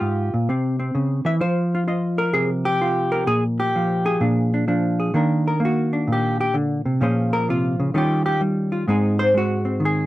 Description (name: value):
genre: solo jazz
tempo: 128 BPM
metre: 4/4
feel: swing 67% on 8ths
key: Eb major from 5.1 s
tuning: A4 = 439 Hz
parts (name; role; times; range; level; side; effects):
- hollow-body jazz guitar; solo; 0.0-10.1 s; Ab2 to E5; -18 LUFS; equal; none
room: light reverb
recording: dry, close 1970s-style studio recording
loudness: -18 LUFS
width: side -16 dB against mid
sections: 0.0-5.1 A section; 5.1-10.1 B section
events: hollow-body jazz guitar solo 5.1-10.1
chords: 0.5 C; 1.4 F5; 3.3 Bb5; 4.2 Bb7; 5.1 Eb5; 7.0 Bbm9; 7.9 Eb9; 8.9 Ab